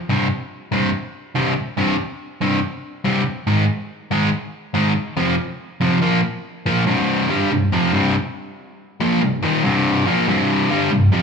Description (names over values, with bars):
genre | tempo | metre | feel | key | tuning
rock | 141 BPM | 4/4 | straight | unclear | A4 = 440 Hz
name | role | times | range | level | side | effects
overdriven electric guitar | solo | 0.1-11.2 s | C2 to Bb3 | -17 LUFS | equal | slapback echo
room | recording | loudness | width
light reverb, digital ambience | live gig heard through the venue's PA, club reverb | -17 LUFS | side -6 dB against mid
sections
0.0-6.9 A section; 6.9-11.2 B section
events
none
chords
0.1 C5; 3.5 Ab5; 5.2 F5; 6.0 Bb5; 6.9 C5